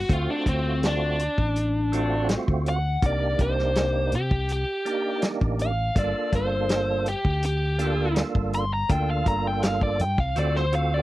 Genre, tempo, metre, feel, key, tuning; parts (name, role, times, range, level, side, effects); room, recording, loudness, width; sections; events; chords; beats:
straight-eighth soul blues; 82 BPM; 4/4; straight; G minor; A4 = 440 Hz
biting lead guitar; melody; 0.0-11.0 s; C4 to C6; -26 LUFS; left 1 dB; overdrive
fingered electric bass; bass; 0.0-11.0 s; G1 to C3; -26 LUFS; equal
percussive tonewheel organ; accompaniment; 0.1-11.0 s; A3 to A4; -29 LUFS; right 4 dB; slow rotary speaker, overdrive, chorus vibrato
warm soul drum kit; drums; 0.1-10.9 s; hi-hat, kick drum, snare drum; -25 LUFS; equal
small room ambience; dry, close 1970s-style studio recording; -22 LUFS; side -16 dB against mid
0.0-11.0 A section
lead electric guitar solo 0.0-11.0
0.1 D7#9; 3.0 Cm9; 6.0 Gm9; 10.4 D7#9
| 0.10 0.83 1.56 2.29 | 3.03 3.76 4.49 5.23 | 5.96 6.69 7.43 8.16 | 8.89 9.63 10.36